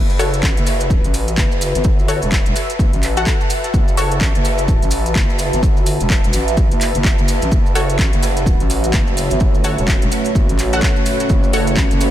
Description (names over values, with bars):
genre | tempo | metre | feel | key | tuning
bass house | 127 BPM | 4/4 | swing 60% on 16ths | F# phrygian | A4 = 440 Hz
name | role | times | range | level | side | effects
growling FM bass | bass | 0.0-12.1 s | E1 to A1 | -21 LUFS | equal | overdrive, sidechain pumping
granular cloud pad | texture | 0.0-12.1 s | F#4 to B5 | -23 LUFS | right 1 dB | built-in reverb, sidechain pumping
maracas | percussion | 0.1-12.1 s | none | -30 LUFS | right 2 dB | none
orchestra-hit-like synth stab | stabs | 0.2-4.1, 7.8-11.6 s | F#4 to F#5 | -24 LUFS | left 1 dB | built-in reverb, cassette tape, sidechain pumping, tape echo
house drum kit | drums | 0.2-12.1 s | handclaps, hi-hat | -24 LUFS | equal | overdrive
electronic kick drum | drums | 0.4-11.9 s | none | -16 LUFS | equal | overdrive
dark analog pad | sustained chords | 8.3-12.1 s | A3 to C#5 | -22 LUFS | right 1 dB | chorus, vintage 12-bit sampler grit, sidechain pumping
room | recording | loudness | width
light reverb, digital ambience | none | -13 LUFS | side -12 dB against mid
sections
0.0-12.1 A section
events
none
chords
0.0 F#m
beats
0.43 0.90 1.38 | 1.85 2.32 2.79 3.27 | 3.74 4.21 4.68 5.16 | 5.63 6.10 6.57 7.04 | 7.52 7.99 8.46 8.94 | 9.41 9.88 10.35 10.82 | 11.30 11.77